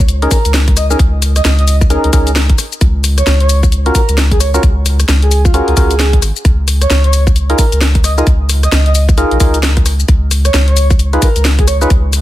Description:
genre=UK garage, two-step garage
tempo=132 BPM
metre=4/4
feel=swing 61% on 16ths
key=Db major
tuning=A4 = 440 Hz
part: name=soft dub sub bass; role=bass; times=0.0-12.2 s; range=Ab1 to Db2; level=-12 LUFS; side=equal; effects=none
part: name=electronic kick drum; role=drums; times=0.0-12.0 s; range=none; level=-11 LUFS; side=equal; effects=none
part: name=garage drum kit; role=drums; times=0.0-12.2 s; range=hi-hat, rim click, shaker, snare drum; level=-17 LUFS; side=left 2 dB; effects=none
part: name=percussive organ stab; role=stabs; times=0.2-11.9 s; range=Db4 to Cb5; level=-18 LUFS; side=equal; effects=chorus, dub echo
part: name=breathy flute-like synth lead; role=melody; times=0.3-11.9 s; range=F4 to Eb5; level=-20 LUFS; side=right 1 dB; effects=wide subtle chorus, dub echo
room=little or no reverb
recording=dense, heavily limited modern master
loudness=-9 LUFS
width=side -14 dB against mid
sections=0.0-12.2 A section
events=none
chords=0.0 Dbsus2; 2.6 Ab13sus4; 6.4 Db6; 10.1 Db7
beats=0.09 0.54 | 0.99 1.45 1.90 2.36 | 2.81 3.27 3.72 4.18 | 4.63 5.08 5.54 5.99 | 6.45 6.90 7.36 7.81 | 8.27 8.72 9.18 9.63 | 10.09 10.54 10.99 11.45 | 11.90

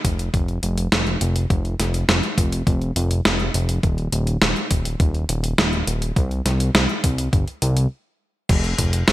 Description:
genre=synthwave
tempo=103 BPM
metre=4/4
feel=straight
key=unclear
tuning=A4 = 439 Hz
part: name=fat analog bass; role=bass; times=0.0-9.1 s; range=Eb1 to C2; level=-21 LUFS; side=equal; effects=none
part: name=clean 12-bit digital drum machine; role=drums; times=0.0-9.1 s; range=crash cymbal, hi-hat, snare drum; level=-21 LUFS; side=equal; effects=gated reverb
part: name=electronic kick drum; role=drums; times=0.0-8.9 s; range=none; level=-20 LUFS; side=equal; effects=none
room=light reverb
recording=bright 1980s-style digital production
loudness=-18 LUFS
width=side -15 dB against mid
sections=0.0-8.5 A section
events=stop 7.9-8.5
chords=none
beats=0.34 0.92 | 1.50 2.09 2.67 3.25 | 3.83 4.42 5.00 5.58 | 6.16 6.75 7.33 7.91 | 8.49 9.08

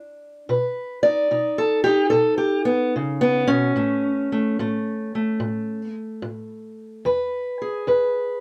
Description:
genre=acoustic country blues, solo or duo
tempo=73 BPM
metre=4/4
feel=swing 67% on 8ths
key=unclear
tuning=A4 = 441 Hz
part: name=fingerpicked steel-string acoustic guitar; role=solo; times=0.0-8.4 s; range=E2 to D5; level=-22 LUFS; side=equal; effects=none
room=light reverb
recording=dark, warm production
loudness=-22 LUFS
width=mono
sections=0.0-8.4 A section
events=steel-string acoustic guitar solo 0.0-8.4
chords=0.5 B; 3.8 N.C.; 7.0 E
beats=| 0.48 1.30 2.12 2.94 | 3.76 4.58 5.41 6.23 | 7.05 7.87

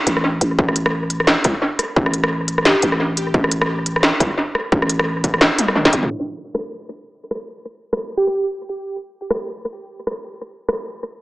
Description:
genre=half-time drum and bass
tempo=174 BPM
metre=4/4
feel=swing 57% on 16ths, half-time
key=A minor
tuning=A4 = 440 Hz
part: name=growling 808-style bass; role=bass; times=0.1-6.1 s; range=G1 to C2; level=-21 LUFS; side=equal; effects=none
part: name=industrial drum kit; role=drums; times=0.1-10.7 s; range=hi-hat, rim click, snare drum, toms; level=-18 LUFS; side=equal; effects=analog delay
part: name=electronic kick drum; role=drums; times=0.6-5.9 s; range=none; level=-20 LUFS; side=equal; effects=distortion
part: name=plucky unison lead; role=melody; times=2.7-2.9, 8.2-8.4 s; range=G4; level=-23 LUFS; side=right 1 dB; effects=phaser, vintage 12-bit sampler grit, tape echo
room=wet plate reverb, RT60 1.7 s, digital ambience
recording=echo-heavy mix, low-pass filter, small speaker sound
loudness=-16 LUFS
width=side -19 dB against mid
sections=0.0-6.1 A section; 6.1-11.2 B section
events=drum fill 5.6-6.1; filter sweep 6.1-11.2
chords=none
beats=0.24 | 0.59 0.93 1.28 1.62 | 1.97 2.31 2.66 3.00 | 3.35 3.69 4.04 4.38 | 4.72 5.07 5.42 5.76 | 6.11 6.45 6.79 7.14 | 7.48 7.83 8.17 8.52 | 8.86 9.21 9.55 9.90 | 10.24 10.59

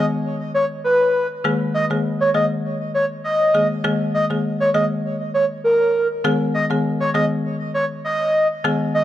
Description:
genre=dancehall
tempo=100 BPM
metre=4/4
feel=straight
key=G# minor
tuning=A4 = 440 Hz
part: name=breathy flute-like synth lead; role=melody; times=0.0-9.0 s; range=A#4 to D#5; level=-19 LUFS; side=equal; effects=chorus, digital delay
part: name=folk marimba with medium hard mallets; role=accompaniment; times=0.0-8.8 s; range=D#3 to G#4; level=-22 LUFS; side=left 2 dB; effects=none
room=moderate plate reverb, RT60 2.9 s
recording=none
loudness=-17 LUFS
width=side -12 dB against mid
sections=0.0-6.2 A section; 6.2-9.0 B section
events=none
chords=0.0 G#m; 1.4 D#sus4; 6.2 G#m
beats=0.24 0.84 | 1.44 2.04 2.64 3.24 | 3.84 4.44 5.04 5.64 | 6.24 6.84 7.44 8.04 | 8.64

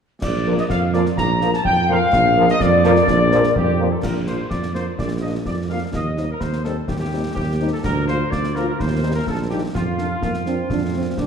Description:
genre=military-style march for wind band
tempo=126 BPM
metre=2/4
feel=straight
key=Bb major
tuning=A4 = 440 Hz
part: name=dark trumpet section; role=melody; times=0.2-11.3 s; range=F4 to Bb5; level=-23 LUFS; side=left 1 dB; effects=none
part: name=mellow hollow flute section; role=second line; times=0.2-3.8 s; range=D5 to Bb5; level=-22 LUFS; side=left 4 dB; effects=none
part: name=mellow tuba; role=bass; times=0.2-11.3 s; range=Bb1 to F2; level=-21 LUFS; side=right 3 dB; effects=none
part: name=concert snare drum, clash cymbals and concert bass drum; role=drums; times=0.2-11.3 s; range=none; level=-28 LUFS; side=left 1 dB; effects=none
part: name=dark French horn section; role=accompaniment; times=0.5-11.0 s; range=F3 to Bb4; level=-27 LUFS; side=left 4 dB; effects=none
part: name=warm trombone section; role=sustained chords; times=0.5-3.9 s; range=Bb2 to F3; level=-25 LUFS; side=right 2 dB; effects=none
part: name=mellow euphonium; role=second line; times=10.2-11.3 s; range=Bb3 to D4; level=-25 LUFS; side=right 4 dB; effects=none
room=wet scoring stage reverb, RT60 1.9 s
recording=dark, warm production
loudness=-17 LUFS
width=side -7 dB against mid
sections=0.2-4.0 A section; 4.0-11.3 B section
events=none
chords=0.2 Bb; 5.9 Cm/Eb; 7.8 Bb/D; 8.8 Eb; 9.7 Bb/F; 10.7 F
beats=| 0.22 0.70 | 1.18 1.65 | 2.13 2.60 | 3.08 3.55 | 4.03 4.51 | 4.98 5.46 | 5.93 6.41 | 6.89 7.36 | 7.84 8.32 | 8.79 9.27 | 9.75 10.22 | 10.70 11.18

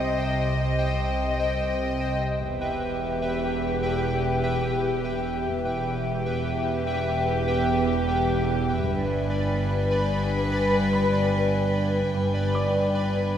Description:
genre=cinematic, suspense film score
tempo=free time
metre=none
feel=none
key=unclear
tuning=A4 = 440 Hz
part: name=warm studio violin section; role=melody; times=0.0-13.4 s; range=G4 to Eb5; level=-29 LUFS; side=left 2 dB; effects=none
part: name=pulsing gated texture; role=sustained chords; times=0.0-13.4 s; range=B4 to B5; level=-28 LUFS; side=left 1 dB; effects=chorus, built-in reverb
part: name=rich symphonic cello section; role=bass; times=0.0-13.4 s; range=E2 to C3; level=-28 LUFS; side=right 2 dB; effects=none
part: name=warm studio double bass section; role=bass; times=0.0-13.4 s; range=E1 to C2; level=-29 LUFS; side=equal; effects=none
part: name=bright grand piano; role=texture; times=0.0-2.4, 10.9-13.4 s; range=C5 to Eb6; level=-34 LUFS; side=left 1 dB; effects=none
part: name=clear studio violin section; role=texture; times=8.9-13.4 s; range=G5 to G#5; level=-37 LUFS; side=left 4 dB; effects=none
room=wet scoring stage reverb, RT60 1.8 s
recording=heard from further back in the room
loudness=-22 LUFS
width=side -9 dB against mid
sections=0.0-13.4 A section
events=none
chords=0.0 Cm; 2.4 Em; 8.9 G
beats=free time

